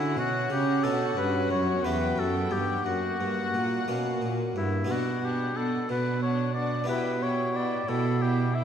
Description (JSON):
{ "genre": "classical, baroque-style concerto movement with solo episodes", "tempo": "60 BPM (dotted quarters)", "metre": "6/8", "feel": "straight", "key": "B minor", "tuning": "A4 = 440 Hz", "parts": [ { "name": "rich chamber violin section", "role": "melody", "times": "0.0-8.6 s", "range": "F#5 to G5", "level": "-41 LUFS", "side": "left 5 dB", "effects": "none" }, { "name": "warm oboe", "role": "melody", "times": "0.0-8.6 s", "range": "E4 to E5", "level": "-30 LUFS", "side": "left 2 dB", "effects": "none" }, { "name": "warm chamber violin section", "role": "second line", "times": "0.0-8.6 s", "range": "D4 to F#4", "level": "-35 LUFS", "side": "left 3 dB", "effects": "none" }, { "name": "dark chamber viola section", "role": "accompaniment", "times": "0.0-8.6 s", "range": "A#3 to C#4", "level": "-33 LUFS", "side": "right 2 dB", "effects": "none" }, { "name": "harpsichord", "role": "accompaniment", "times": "0.0-8.6 s", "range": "E2 to G4", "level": "-33 LUFS", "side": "equal", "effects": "none" }, { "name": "rich chamber cello section", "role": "bass", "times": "0.0-8.6 s", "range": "E2 to D3", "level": "-30 LUFS", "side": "right 2 dB", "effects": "none" } ], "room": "wet concert hall reverb, RT60 2.5 s", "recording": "dark, warm production", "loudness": "-25 LUFS", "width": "side -8 dB against mid", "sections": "0.0-4.9 A section; 4.9-8.6 A section", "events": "none", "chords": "0.0 F#7(no3); 0.8 Bm; 1.8 Em; 2.9 F#; 4.9 Bm; 6.9 Em/B" }